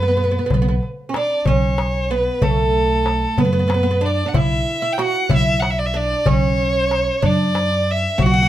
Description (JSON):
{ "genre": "Arabic maqam ensemble", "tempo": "62 BPM (dotted quarters)", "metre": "6/8", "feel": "straight", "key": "B maqam bayati", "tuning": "A4 = 444 Hz", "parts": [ { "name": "warm violin", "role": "melody", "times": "0.0-8.5 s", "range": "A4 to G5", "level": "-20 LUFS", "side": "equal", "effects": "none" }, { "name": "oud", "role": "second line", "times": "0.0-8.5 s", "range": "A3 to F#4", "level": "-24 LUFS", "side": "right 4 dB", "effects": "none" }, { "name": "upright bass", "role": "bass", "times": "0.0-8.5 s", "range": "B1 to F#2", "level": "-20 LUFS", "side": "equal", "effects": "none" }, { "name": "darbuka", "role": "percussion", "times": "0.5-8.3 s", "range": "none", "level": "-21 LUFS", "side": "left 2 dB", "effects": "none" } ], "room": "moderate small room reverb, RT60 0.6 s", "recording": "minimal, uncompressed stereo recording", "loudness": "-16 LUFS", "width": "side -13 dB against mid", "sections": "0.0-8.5 A section", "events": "none", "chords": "none", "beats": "0.51 | 1.47 2.43 | 3.39 4.35 | 5.31 6.28 | 7.24 8.20" }